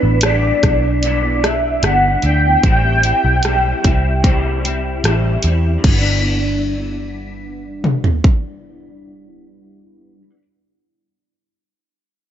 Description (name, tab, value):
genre	indie pop, bedroom pop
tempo	75 BPM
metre	4/4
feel	straight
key	G major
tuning	A4 = 440 Hz
part	warm velvety synth lead	melody	0.0-5.0 s	B4 to G5	-18 LUFS	right 1 dB	ensemble chorus, digital delay
part	electric guitar through a small old amp	accompaniment	0.0-10.4 s	G2 to E4	-21 LUFS	left 1 dB	ensemble chorus, warbly pitch drift
part	vintage muted picked electric bass	bass	0.0-10.2 s	G1 to E2	-18 LUFS	equal	none
part	pop drum kit	drums	0.2-8.4 s	crash cymbal, hi-hat, kick drum, rim click, toms	-16 LUFS	equal	none
room	digital ambience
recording	nothing above 7.6 kHz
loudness	-13 LUFS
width	side -10 dB against mid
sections	0.0-5.8 A section; 5.8-9.0 B section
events	none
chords	0.0 G6; 2.6 Am7; 5.8 G6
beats	0.23 1.03 1.83 | 2.63 3.43 4.24 5.04 | 5.84 6.64 7.44 8.24